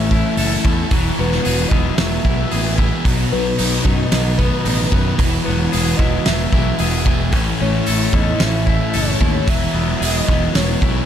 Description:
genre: rock, shoegaze and dream pop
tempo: 112 BPM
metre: 4/4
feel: straight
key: E major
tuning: A4 = 440 Hz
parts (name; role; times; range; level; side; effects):
- soft octave-layered synth lead; melody; 0.0-11.1 s; B4 to E5; -26 LUFS; equal; chorus, phaser, digital delay
- twangy electric guitar; arpeggios; 0.0-11.1 s; F#3 to A4; -28 LUFS; left 8 dB; lush chorus, digital delay
- crunchy overdriven guitar; riff; 0.0-11.1 s; A2 to E4; -25 LUFS; equal; none
- overdriven semi-hollow guitar; riff; 0.0-11.1 s; A2 to B4; -25 LUFS; right 12 dB; reverse reverb
- thick fuzz guitar; riff; 0.0-11.1 s; A2 to F#4; -23 LUFS; left 9 dB; distortion, wide subtle chorus
- growling fingered electric bass; bass; 0.0-11.0 s; E1 to F#2; -21 LUFS; equal; overdrive
- loose indie drum kit; drums; 0.1-10.9 s; hi-hat, kick drum, snare drum; -19 LUFS; equal; none
room: small room ambience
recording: none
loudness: -14 LUFS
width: side -9 dB against mid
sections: 0.0-11.1 A section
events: none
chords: 0.0 A; 0.9 Eadd9; 3.1 B; 5.2 Eadd9; 7.3 A; 9.5 Eadd9

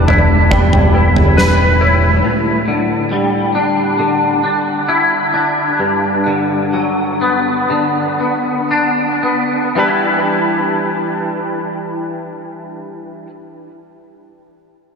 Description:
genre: post-rock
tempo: 56-69 BPM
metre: 4/4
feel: straight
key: E minor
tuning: A4 = 444 Hz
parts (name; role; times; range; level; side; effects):
- felt-muted upright piano; arpeggios; 0.0-2.2 s; B4 to D5; -24 LUFS; equal; analog chorus, analog delay
- twangy electric guitar; arpeggios; 0.0-13.3 s; G2 to B4; -14 LUFS; left 1 dB; ensemble chorus, analog delay
- growling fingered electric bass; bass; 0.0-2.2 s; E1; -13 LUFS; equal; overdrive
- huge arena drum kit; drums; 0.1-1.6 s; kick drum, snare drum, toms; -16 LUFS; right 1 dB; none
room: wet huge ambient reverb, RT60 4.2 s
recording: dreamy mix soaked in reverb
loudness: -12 LUFS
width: side -5 dB against mid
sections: 0.0-9.8 A section; 9.8-14.1 B section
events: slowing down 2.2-9.8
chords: 0.0 Em7; 2.2 A7sus4; 5.8 Gmaj7; 9.8 Em7

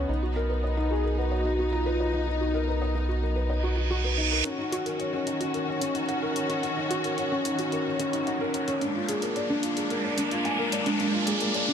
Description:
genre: piano and strings electronica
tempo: 110 BPM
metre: 4/4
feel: straight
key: unclear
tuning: A4 = 440 Hz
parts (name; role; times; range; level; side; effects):
- rich studio string section; sustained chords; 0.0-11.7 s; Eb3 to Gb4; -31 LUFS; equal; none
- felt-muted upright piano; riff; 0.0-11.7 s; Db4 to A#5; -29 LUFS; left 1 dB; tape echo
- round analog bass; bass; 0.0-11.7 s; Bb1 to Eb2; -30 LUFS; equal; high-pass filter
- warm velvety synth lead; melody; 0.9-3.9 s; D#4 to Ab4; -34 LUFS; equal; chorus, tape echo
- reverse cymbal and riser; sound effects; 3.6-11.7 s; none; -32 LUFS; right 2 dB; none
- electronic hi-hat; drums; 4.5-11.7 s; none; -36 LUFS; left 1 dB; low-pass filter on hats, low-pass filter on room
room: light reverb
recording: dark, warm production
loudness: -25 LUFS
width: side -8 dB against mid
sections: 0.0-4.5 A section; 4.5-11.7 B section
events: reverse cymbal 3.6-4.5; build-up 4.5-11.7; riser 4.5-11.7; filter sweep 4.5-11.7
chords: 0.1 Bmaj7; 4.5 Ebm7; 8.8 Bb7

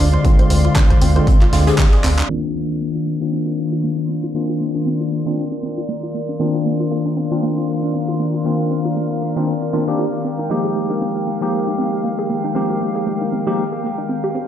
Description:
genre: deep house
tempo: 117 BPM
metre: 4/4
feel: swing 57% on 16ths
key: C minor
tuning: A4 = 441 Hz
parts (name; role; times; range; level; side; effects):
- hollow soft pad; sustained chords; 0.0-14.5 s; Eb3 to C6; -26 LUFS; left 1 dB; chorus, sidechain pumping
- analog pluck; arpeggios; 0.0-14.4 s; Bb3 to C5; -26 LUFS; right 1 dB; chorus, sidechain pumping, digital delay
- tine electric piano; stabs; 0.0-13.6 s; D3 to G4; -19 LUFS; left 2 dB; medium stereo tremolo, sidechain pumping, low-pass filter, digital delay
- round analog bass; bass; 0.0-2.2 s; D2; -16 LUFS; equal; sidechain pumping
- deep house drum kit; drums; 0.1-14.5 s; cabasa, crash cymbal, handclaps, hi-hat; -24 LUFS; equal; low-pass filter on hats, low-pass filter on snare, low-pass filter on cymbals, low-pass filter on perc
- electronic kick drum; drums; 0.2-1.9 s; none; -14 LUFS; equal; none
- jazz brush drum kit; drums; 0.2-2.2 s; hi-hat, snare drum; -32 LUFS; left 2 dB; none
room: light reverb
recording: played on a big sound system in a bare room, large studio reverb, low-pass filter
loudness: -16 LUFS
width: side -10 dB against mid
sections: 0.0-2.3 A section; 2.3-14.5 B section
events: drum fill 2.0; filter sweep on tine electric piano 2.3-14.5; filter sweep on analog synth pad 2.3-14.5; filter sweep on synth arpeggio sound 2.3-14.5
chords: 0.0 Dm7b5; 2.3 Cm11; 10.2 Fm11

